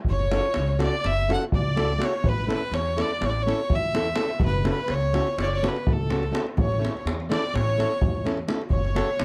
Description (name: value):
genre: balkan folk, Balkan wedding band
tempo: 251 BPM (eighths)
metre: 9/8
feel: straight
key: unclear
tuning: A4 = 440 Hz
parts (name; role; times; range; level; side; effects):
- davul; percussion; 0.0-9.2 s; none; -30 LUFS; equal; none
- warm fiddle; melody; 0.1-9.2 s; A4 to F#5; -31 LUFS; equal; none
- dark violin; second line; 0.1-9.2 s; A4 to F#5; -36 LUFS; equal; none
- upright bass; bass; 0.1-9.2 s; F#1 to E2; -30 LUFS; equal; none
- flamenco guitar; accompaniment; 0.3-9.1 s; A3 to A4; -29 LUFS; equal; none
room: light reverb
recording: dry, close 1970s-style studio recording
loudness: -24 LUFS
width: mono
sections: 0.1-9.2 A section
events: none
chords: 0.1 F#m; 2.2 A; 4.4 F#m; 6.5 A; 8.7 F#m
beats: | 0.08 0.32 0.56 0.80 1.04 1.28 1.52 1.76 2.00 | 2.24 2.48 2.72 2.96 3.20 3.44 3.68 3.92 4.16 | 4.40 4.63 4.87 5.11 5.35 5.59 5.83 6.07 6.31 | 6.55 6.79 7.03 7.27 7.50 7.74 7.98 8.22 8.46 | 8.70 8.94 9.18